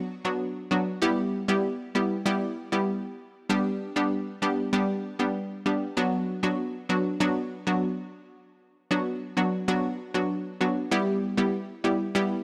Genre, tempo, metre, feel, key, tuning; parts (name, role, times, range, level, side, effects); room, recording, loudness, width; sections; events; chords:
dancehall; 97 BPM; 4/4; straight; B minor; A4 = 440 Hz
analog pluck; solo; 0.2-12.3 s; F#3 to G4; -28 LUFS; equal; chorus
light reverb, digital ambience; dry, gritty hardware recording; -28 LUFS; mono
0.0-12.4 A section
0.0 Bm; 1.0 Em; 3.5 G; 6.0 Bm; 10.9 Em